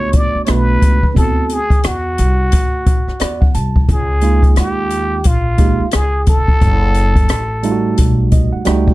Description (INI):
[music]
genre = hip hop, jazz-hop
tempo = 88 BPM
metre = 4/4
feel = swing 60% on 16ths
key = unclear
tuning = A4 = 439 Hz
[part]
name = trumpet with plunger mute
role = melody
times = 0.0-8.3 s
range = E#4 to D5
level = -19 LUFS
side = equal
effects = plate reverb
[part]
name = tine electric piano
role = accompaniment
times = 0.0-8.9 s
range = G3 to A5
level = -18 LUFS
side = right 5 dB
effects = overdrive
[part]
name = upright bass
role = bass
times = 0.0-8.9 s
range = E#1 to E2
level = -17 LUFS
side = equal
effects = none
[part]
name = open jazz drum kit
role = drums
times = 0.1-8.9 s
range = hi-hat, kick drum, rim click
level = -14 LUFS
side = equal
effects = none
[sound]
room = little or no reverb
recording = dark, warm production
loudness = -12 LUFS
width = side -18 dB against mid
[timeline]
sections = 0.0-8.9 A section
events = tine electric piano fill 2.9-3.9, 8.0-8.9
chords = 0.0 Gmaj9 (rootless); 1.2 D13; 3.9 C#69; 6.6 F#m6; 8.0 B7b13